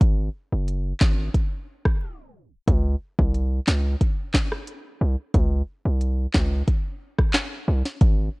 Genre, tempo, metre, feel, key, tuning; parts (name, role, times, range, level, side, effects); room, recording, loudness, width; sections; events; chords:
dancehall; 90 BPM; 4/4; straight; A4 = 440 Hz
hard-hitting 808-style bass; bass; 0.0-8.3 s; Gb1 to Db2; -22 LUFS; equal
afro-pop drum kit; drums; 0.0-8.2 s; handclaps, hi-hat, kick drum, rim click, snare drum; -21 LUFS; equal
little or no reverb; worn, warbling old tape, cassette tape, warbly pitch drift, tape stop; -21 LUFS; side -29 dB against mid
0.0-2.7 A section; 2.7-8.4 B section
break 2.0-2.7; tape stop 2.0-2.7